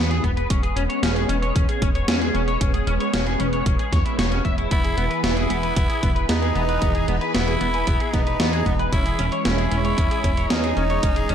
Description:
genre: synthwave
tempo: 114 BPM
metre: 4/4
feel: straight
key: C# minor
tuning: A4 = 439 Hz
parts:
  - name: analog string pad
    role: sustained chords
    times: 0.0-11.3 s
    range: E3 to B4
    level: -27 LUFS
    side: right 1 dB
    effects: ensemble chorus, phaser, sidechain pumping
  - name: clean electric guitar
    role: arpeggios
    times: 0.0-11.3 s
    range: B3 to E5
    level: -27 LUFS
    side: left 2 dB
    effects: ensemble chorus, low-pass filter, ping-pong delay
  - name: chorused synth bass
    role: bass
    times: 0.0-11.3 s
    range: E1 to E2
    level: -24 LUFS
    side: equal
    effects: none
  - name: gated 80s digital drum machine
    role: drums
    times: 0.1-11.3 s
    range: hi-hat, snare drum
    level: -27 LUFS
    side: equal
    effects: gated reverb, gated reverb snare
  - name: electronic kick drum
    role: drums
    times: 0.2-11.1 s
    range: none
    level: -23 LUFS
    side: equal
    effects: none
  - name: raspy tenor saxophone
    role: melody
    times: 4.7-11.3 s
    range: D#4 to E4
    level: -26 LUFS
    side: right 1 dB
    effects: digital delay
room: light reverb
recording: none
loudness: -19 LUFS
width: side -9 dB against mid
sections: 0.0-11.3 A section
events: none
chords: 0.0 E; 0.5 C#m/E; 4.7 E; 8.9 C#m/E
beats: | 0.50 1.03 1.56 2.08 | 2.61 3.13 3.66 4.19 | 4.71 5.24 5.77 6.29 | 6.82 7.35 7.87 8.40 | 8.93 9.45 9.98 10.50 | 11.03

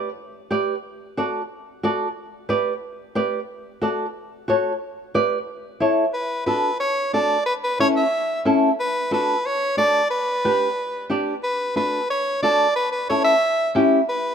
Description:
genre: latin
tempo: 181 BPM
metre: 4/4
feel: straight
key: D major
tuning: A4 = 439 Hz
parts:
  - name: flamenco guitar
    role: accompaniment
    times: 0.0-14.0 s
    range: C#4 to D5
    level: -22 LUFS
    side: equal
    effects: none
  - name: bright soprano saxophone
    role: melody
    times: 6.1-14.3 s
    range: B4 to E5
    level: -21 LUFS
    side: equal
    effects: none
room: moderate plate reverb, RT60 2.9 s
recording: minimal, uncompressed stereo recording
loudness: -19 LUFS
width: side -7 dB against mid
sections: 0.0-6.1 A section; 6.1-14.3 B section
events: none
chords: 0.0 G; 0.8 D; 2.2 G; 3.5 D; 4.8 G; 5.5 A; 6.1 D6; 7.5 A; 8.8 D6; 10.1 G; 11.4 D6; 12.8 A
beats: 0.18 0.51 | 0.84 1.17 1.50 1.83 | 2.16 2.49 2.83 3.15 | 3.49 3.82 4.15 4.48 | 4.81 5.14 5.47 5.80 | 6.13 6.46 6.79 7.13 | 7.46 7.79 8.12 8.45 | 8.78 9.12 9.45 9.78 | 10.11 10.44 10.77 11.10 | 11.44 11.77 12.10 12.43 | 12.76 13.09 13.42 13.76 | 14.09

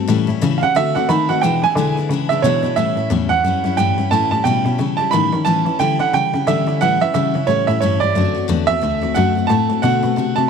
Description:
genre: rockabilly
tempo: 178 BPM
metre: 4/4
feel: swing 60% on 8ths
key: A mixolydian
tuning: A4 = 440 Hz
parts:
  - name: picked steel-string acoustic guitar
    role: accompaniment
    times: 0.0-10.5 s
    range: E2 to F#4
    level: -20 LUFS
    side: left 14 dB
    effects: none
  - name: warm cello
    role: bass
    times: 0.0-10.5 s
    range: D2 to E3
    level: -20 LUFS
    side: left 1 dB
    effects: none
  - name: bright upright piano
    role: melody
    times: 0.6-10.5 s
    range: C#5 to B5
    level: -18 LUFS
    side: right 9 dB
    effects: none
room: light reverb, small room ambience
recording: 1960s-style stereo with parts hard left and right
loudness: -15 LUFS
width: side -6 dB against mid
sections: 0.0-2.8 A section; 2.8-10.5 B section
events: upright piano solo 0.0-2.8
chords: 0.1 A7; 0.8 D7; 1.4 E7; 2.8 A7; 8.2 D7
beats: | 0.09 0.42 0.76 1.09 | 1.43 1.76 2.10 2.44 | 2.77 3.11 3.44 3.78 | 4.12 4.45 4.79 5.13 | 5.46 5.80 6.14 6.47 | 6.81 7.15 7.48 7.82 | 8.15 8.49 8.83 9.16 | 9.50 9.84 10.17

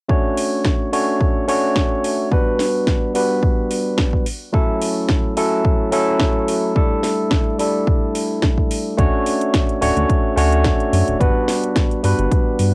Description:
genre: nu-disco, nu disco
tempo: 108 BPM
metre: 4/4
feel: swing 54% on 16ths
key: D major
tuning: A4 = 440 Hz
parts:
  - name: barky tine electric piano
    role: accompaniment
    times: 0.1-12.7 s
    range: F#3 to C#5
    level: -18 LUFS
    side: equal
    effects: low-pass filter, cassette tape, analog delay
  - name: electronic kick drum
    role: drums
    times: 0.1-12.4 s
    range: none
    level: -18 LUFS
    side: equal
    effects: small room ambience
  - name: house drum kit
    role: drums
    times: 0.4-12.7 s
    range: hi-hat, snare drum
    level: -24 LUFS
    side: equal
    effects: small room ambience
  - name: chorused synth bass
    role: bass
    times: 9.0-12.7 s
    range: D1 to G2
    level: -17 LUFS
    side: equal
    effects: sidechain pumping
room: light reverb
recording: home recording on cassette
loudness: -15 LUFS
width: side -26 dB against mid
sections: 0.1-9.0 A section; 9.0-12.7 B section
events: none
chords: 0.1 Dmaj7; 2.3 Gmaj7; 4.3 F#m7; 6.8 A7sus4; 9.0 Dmaj7; 11.2 Gmaj7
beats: | 0.09 0.65 1.20 1.76 | 2.31 2.87 3.43 3.98 | 4.54 5.09 5.65 6.20 | 6.76 7.32 7.87 8.43 | 8.98 9.54 10.09 10.65 | 11.20 11.76 12.31

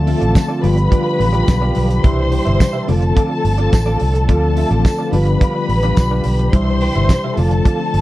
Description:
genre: disco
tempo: 107 BPM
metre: 4/4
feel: straight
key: unclear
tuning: A4 = 440 Hz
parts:
  - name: dark studio string section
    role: second line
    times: 0.0-8.0 s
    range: A4 to C6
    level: -21 LUFS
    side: left 2 dB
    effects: none
  - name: mellow tine electric piano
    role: accompaniment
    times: 0.0-8.0 s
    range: B2 to F4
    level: -21 LUFS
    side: left 3 dB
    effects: medium stereo tremolo
  - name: warm French horn section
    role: sustained chords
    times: 0.0-8.0 s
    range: D3 to A4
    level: -25 LUFS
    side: right 2 dB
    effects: none
  - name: fingered electric bass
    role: bass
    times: 0.0-8.0 s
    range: F1 to D2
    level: -16 LUFS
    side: equal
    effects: none
  - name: electric guitar at the edge of break-up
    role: accompaniment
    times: 0.1-8.0 s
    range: B3 to G5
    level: -26 LUFS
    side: right 6 dB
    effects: tremolo
  - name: damped 70s drum kit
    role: drums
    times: 0.1-8.0 s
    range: hi-hat, kick drum, snare drum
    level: -13 LUFS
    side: equal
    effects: none
  - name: tambourine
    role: percussion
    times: 0.4-7.2 s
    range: none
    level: -37 LUFS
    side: right 9 dB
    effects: none
room: little or no reverb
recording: dry, close 1970s-style studio recording, tape saturation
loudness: -13 LUFS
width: side -16 dB against mid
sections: 0.0-8.0 A section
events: none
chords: 0.0 Dm7; 0.6 G7; 2.0 Cmaj7; 2.9 F6; 4.3 Dm7; 5.1 G7; 6.5 Cmaj7; 7.4 F6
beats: 0.35 0.92 1.48 | 2.04 2.60 3.16 3.73 | 4.29 4.85 5.41 5.97 | 6.54 7.10 7.66

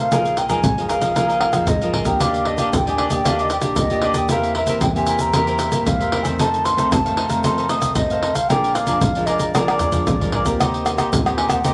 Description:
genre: samba and choro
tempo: 114 BPM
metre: 4/4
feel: straight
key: Eb major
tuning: A4 = 440 Hz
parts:
  - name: baroque flute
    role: melody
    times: 0.0-11.7 s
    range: D5 to Eb6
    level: -24 LUFS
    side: equal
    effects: none
  - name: cavaquinho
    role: accompaniment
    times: 0.0-11.7 s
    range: D4 to F5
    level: -27 LUFS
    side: equal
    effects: none
  - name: nylon-string guitar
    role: accompaniment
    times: 0.0-11.7 s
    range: F2 to G4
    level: -27 LUFS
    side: equal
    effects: none
  - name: metallic FM bass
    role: bass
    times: 0.0-11.7 s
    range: Bb1 to G2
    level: -34 LUFS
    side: equal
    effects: none
  - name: tube shaker, surdo, pandeiro and tamborim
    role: percussion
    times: 0.1-11.7 s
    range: none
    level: -23 LUFS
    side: equal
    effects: none
room: wet club reverb, RT60 0.6 s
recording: none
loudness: -19 LUFS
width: mono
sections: 0.0-10.6 A section; 10.6-11.7 B section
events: drum fill 1.4-2.2, 9.5-10.6; flute solo 10.6-11.7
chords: 0.1 Bb7sus4; 2.2 Ebmaj7; 4.3 C7/E; 6.4 F7; 8.5 Bb7; 10.6 Eb6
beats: | 0.11 0.63 1.16 1.68 | 2.20 2.73 3.25 3.77 | 4.30 4.82 5.35 5.87 | 6.39 6.92 7.45 7.97 | 8.49 9.02 9.54 10.07 | 10.59 11.12 11.64

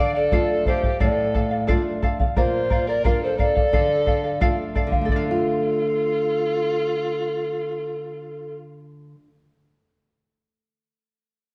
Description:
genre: andean folk, Andean ensemble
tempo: 88 BPM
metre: 4/4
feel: straight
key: D minor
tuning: A4 = 440 Hz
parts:
  - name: mellow hollow polished pan flute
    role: melody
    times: 0.0-8.6 s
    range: A4 to F5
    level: -26 LUFS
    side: equal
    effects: none
  - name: dark violin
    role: second line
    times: 0.0-8.6 s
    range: F4 to D5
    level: -32 LUFS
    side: equal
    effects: none
  - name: charango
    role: accompaniment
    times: 0.0-9.3 s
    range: A4 to F5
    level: -30 LUFS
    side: equal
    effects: none
  - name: nylon-string guitar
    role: accompaniment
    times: 0.0-9.4 s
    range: A2 to F4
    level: -30 LUFS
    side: equal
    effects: none
  - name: bombo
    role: percussion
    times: 0.3-5.4 s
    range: none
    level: -26 LUFS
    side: equal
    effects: none
room: moderate recital hall reverb, RT60 1.6 s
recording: dark, warm production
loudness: -22 LUFS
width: mono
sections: 0.0-5.1 A section; 5.1-7.8 B section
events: none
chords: 0.0 Dm; 2.4 Bb; 3.7 Dm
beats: 0.32 1.00 1.69 | 2.37 3.05 3.73 4.41 | 5.09 5.76 6.44 7.12

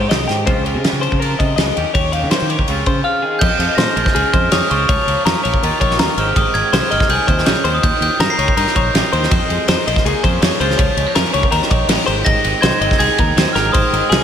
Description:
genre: math rock and midwest emo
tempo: 163 BPM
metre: 4/4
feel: straight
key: Db lydian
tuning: A4 = 440 Hz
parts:
  - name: twangy electric guitar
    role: accompaniment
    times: 0.0-14.2 s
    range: F2 to C5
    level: -24 LUFS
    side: right 6 dB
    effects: slapback echo
  - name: twelve-string electric guitar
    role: arpeggios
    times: 0.0-14.2 s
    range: G4 to F5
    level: -20 LUFS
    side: left 6 dB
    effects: warbly pitch drift, digital delay
  - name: growling fingered electric bass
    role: bass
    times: 0.0-14.2 s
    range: G1 to Eb3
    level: -21 LUFS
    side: equal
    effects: overdrive
  - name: loose indie drum kit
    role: drums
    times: 0.1-14.2 s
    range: crash cymbal, kick drum, ride cymbal, snare drum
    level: -17 LUFS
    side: equal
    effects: none
  - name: glockenspiel with soft plastic mallets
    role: melody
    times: 3.0-9.1, 12.2-14.2 s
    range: Db6 to C7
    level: -20 LUFS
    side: right 2 dB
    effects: none
room: moderate lush hall reverb, RT60 2.2 s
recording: big arena sound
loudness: -13 LUFS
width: side -8 dB against mid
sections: 0.0-3.4 A section; 3.4-14.2 B section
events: none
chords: 0.5 Dbmaj7; 1.8 Eb7; 2.7 Dbmaj7; 3.4 Fm9; 4.0 Bbm11; 4.7 Db6; 5.6 Ebsus2; 6.2 Abmaj7; 7.6 Eb6; 9.3 Fm7; 9.9 Bbm11; 10.6 Db6; 11.5 Eb6; 12.1 Abmaj9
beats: 0.10 | 0.47 0.84 1.21 1.58 | 1.94 2.31 2.68 3.05 | 3.42 3.79 4.15 4.52 | 4.89 5.26 5.62 5.99 | 6.36 6.73 7.10 7.46 | 7.83 8.20 8.57 8.94 | 9.31 9.68 10.05 10.42 | 10.79 11.16 11.53 11.90 | 12.27 12.64 13.01 13.38 | 13.75 14.12

